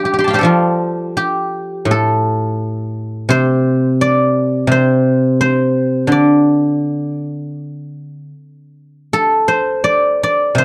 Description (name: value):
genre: chinese traditional, Chinese solo plucked strings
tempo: 76-88 BPM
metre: 4/4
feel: rubato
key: D yu mode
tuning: A4 = 440 Hz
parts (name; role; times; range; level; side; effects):
- guzheng; solo; 0.0-10.6 s; A2 to C6; -15 LUFS; equal; none
room: small room ambience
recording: dry, close 1970s-style studio recording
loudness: -15 LUFS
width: mono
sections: 0.0-9.1 A section; 9.1-10.6 B section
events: none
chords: none